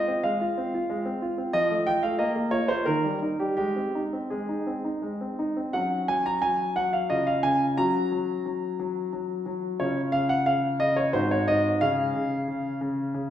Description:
classical-period piano sonatina; 82-93 BPM; 3/4; rubato; Ab major, F# major from 5.7 s; A4 = 436 Hz
clear concert grand piano; solo; 0.0-13.3 s; G#2 to A#5; -24 LUFS; equal
wet recital hall reverb, RT60 1.4 s; recorded in a church or concert hall; -24 LUFS; side -10 dB against mid
0.0-5.7 A section; 5.7-13.3 B section
0.0 Fm/Ab; 1.6 F7; 2.2 Bb5; 2.9 Eb; 3.6 Ab; 5.7 F#5; 7.1 C#; 7.8 F#; 9.8 C#; 11.1 G#7; 11.8 C#

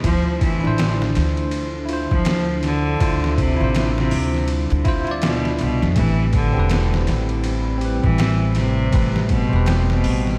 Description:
trip hop; 81 BPM; 4/4; swing 60% on 16ths; A4 = 440 Hz
bright cello; melody; 0.0-10.4 s; B2 to F3; -26 LUFS; equal; vintage 12-bit sampler grit, tape echo
bell-like tine electric piano; accompaniment; 0.0-10.4 s; C4 to D5; -29 LUFS; equal; tremolo, vintage 12-bit sampler grit, tape echo
warbly tape-like pad; sustained chords; 0.0-10.4 s; D3 to E4; -31 LUFS; equal; chorus, built-in reverb
upright bass; bass; 0.0-10.4 s; E1 to F2; -24 LUFS; equal
trip hop sampler-style drum kit; drums; 0.0-10.4 s; hi-hat, kick drum, ride cymbal, snare drum; -26 LUFS; equal; overdrive, small room reverb
Celtic harp; arpeggios; 6.0-10.4 s; A3 to E4; -33 LUFS; equal; tape echo
light reverb; vinyl crackle; -19 LUFS; mono
0.0-10.4 A section
0.0 Dm7; 6.0 Am7

